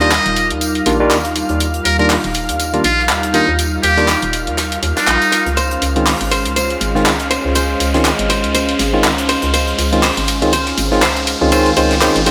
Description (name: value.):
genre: deep house.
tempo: 121 BPM.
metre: 4/4.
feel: swing 57% on 16ths.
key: unclear.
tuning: A4 = 440 Hz.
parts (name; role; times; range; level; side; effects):
trumpet with metal mute; melody; 0.0-5.5 s; Eb4 to Eb5; -20 LUFS; equal; dub echo.
warm analog pad; sustained chords; 0.0-12.3 s; G3 to D6; -26 LUFS; equal; chorus.
barky tine electric piano; stabs; 0.0-12.3 s; Eb3 to F4; -20 LUFS; equal; overdrive, low-pass filter, delay.
hollow knocking FM bass; bass; 0.0-12.3 s; Eb1 to Eb2; -24 LUFS; equal; none.
deep house drum kit; drums; 0.0-12.3 s; handclaps, hi-hat; -21 LUFS; equal; high-pass filter on hats, high-pass filter on snare, high-pass filter on room.
gated 80s drum kit; drums; 0.0-12.3 s; hi-hat, snare drum, tambourine; -28 LUFS; equal; high-pass filter on hats, high-pass filter on snare, high-pass filter on perc, high-pass filter on room.
riser; sound effects; 1.8-12.3 s; none; -28 LUFS; equal; none.
muted studio violin section; texture; 0.0-12.3 s; F5 to F6; -30 LUFS; equal; none.
warbly tape-like pad; texture; 0.0-12.3 s; Db4 to F5; -28 LUFS; equal; chorus, built-in reverb.
archtop guitar, miked and amplified; melody; 5.6-12.3 s; C5; -23 LUFS; equal; vintage 12-bit sampler grit, dub echo.
room: moderate echo chamber reverb, RT60 1.7 s.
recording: none.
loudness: -15 LUFS.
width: mono.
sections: 0.0-12.3 A section.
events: build-up 0.0-12.3; filter sweep on analog synth pad 0.0-12.3; riser 1.8-12.3.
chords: 0.0 Ebmaj9; 5.6 Dbmaj7.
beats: 0.12 0.61 1.11 | 1.60 2.10 2.60 3.09 | 3.59 4.08 4.58 5.08 | 5.57 6.07 6.56 7.06 | 7.55 8.05 8.55 9.04 | 9.54 10.03 10.53 11.03 | 11.52 12.02.